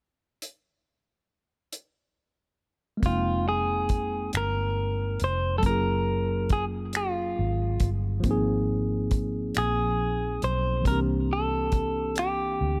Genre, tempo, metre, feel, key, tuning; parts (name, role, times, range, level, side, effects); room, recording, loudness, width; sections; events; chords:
slow six-eight R&B; 46 BPM (dotted quarters); 6/8; straight; A4 = 441 Hz
damped 70s drum kit; drums; 0.4-12.4 s; finger snaps, hi-hat, kick drum; -29 LUFS; equal
tine electric piano; accompaniment; 3.0-12.8 s; E3 to G5; -33 LUFS; equal
vintage muted fingered electric bass; bass; 3.0-12.8 s; F1 to D2; -32 LUFS; equal
clean electric guitar; melody; 3.1-12.8 s; F4 to C5; -31 LUFS; equal
small room ambience; -27 LUFS; mono
0.4-3.0 A section; 3.0-12.8 B section
0.4 N.C.; 3.0 Fm11; 5.6 Gbmaj9; 8.2 Ab6; 10.9 C7